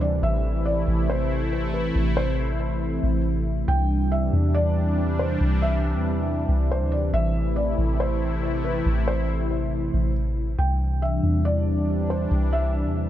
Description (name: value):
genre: hip hop, atmospheric cloud-rap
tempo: 139 BPM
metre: 4/4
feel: half-time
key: C major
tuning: A4 = 440 Hz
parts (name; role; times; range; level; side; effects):
- felt-muted upright piano; melody; 0.0-13.1 s; B4 to G5; -30 LUFS; equal; low-pass filter, digital delay
- sweeping resonant pad; sustained chords; 0.0-13.1 s; C3 to E4; -26 LUFS; equal; chorus
- soft 808-style bass; bass; 0.0-13.1 s; A1 to E2; -24 LUFS; equal; none
room: light reverb, small room ambience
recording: dark, warm production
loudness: -21 LUFS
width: side -12 dB against mid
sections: 0.0-10.6 A section; 10.6-13.1 B section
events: none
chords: 0.2 Am; 3.7 Cadd9; 7.1 Am; 10.6 Cadd9